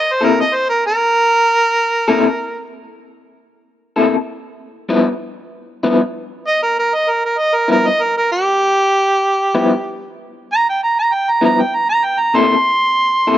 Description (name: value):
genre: blues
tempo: 64 BPM (dotted quarters)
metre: 12/8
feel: straight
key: C mixolydian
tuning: A4 = 439 Hz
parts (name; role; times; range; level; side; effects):
- mellow harmonica; melody; 0.0-13.4 s; G4 to C6; -14 LUFS; right 1 dB; none
- electric guitar through a small old amp; accompaniment; 0.2-13.4 s; G2 to A4; -16 LUFS; left 3 dB; tremolo
room: light reverb, studio ambience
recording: dark, warm production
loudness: -13 LUFS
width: side -12 dB against mid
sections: 0.0-13.4 A section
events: harmonica solo 0.0-13.4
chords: 0.0 C6; 4.9 G6; 12.4 C6